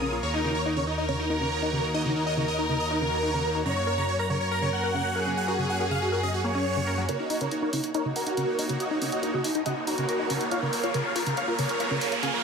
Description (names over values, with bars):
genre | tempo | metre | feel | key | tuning
uplifting trance | 140 BPM | 4/4 | straight | Eb minor | A4 = 443 Hz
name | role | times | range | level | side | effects
big supersaw lead | melody | 0.0-12.4 s | Eb4 to Eb6 | -29 LUFS | right 1 dB | phaser, low-pass filter, ping-pong delay
clear symphonic violin section | second line | 0.0-7.0 s | Ab4 to Db5 | -31 LUFS | left 1 dB | dub echo
tight sequenced synth | arpeggios | 0.0-12.3 s | Db3 to Bb4 | -31 LUFS | left 2 dB | chorus, ping-pong delay
fat analog bass | bass | 0.0-7.1 s | Bb1 to Gb2 | -32 LUFS | equal | none
electronic hi-hat | drums | 7.1-12.3 s | none | -34 LUFS | right 1 dB | overdrive
riser | sound effects | 8.3-12.4 s | none | -33 LUFS | right 1 dB | none
room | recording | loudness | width
light reverb, digital ambience | none | -24 LUFS | side -6 dB against mid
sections
0.0-7.1 A section; 7.1-12.4 B section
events
filter sweep on synth arpeggio sound 0.0-7.1, 7.1-12.4; build-up 7.1-12.4; filter sweep on supersaw synth 7.1-12.4; filter sweep 7.1-12.4; riser 8.3-12.4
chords
0.2 Ebm7; 3.7 Gb; 7.1 Ebm7; 10.5 Bbm7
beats
| 0.23 0.66 1.09 1.51 | 1.94 2.37 2.80 3.23 | 3.66 4.09 4.51 4.94 | 5.37 5.80 6.23 6.66 | 7.09 7.51 7.94 8.37 | 8.80 9.23 9.66 10.09 | 10.52 10.94 11.37 11.80 | 12.23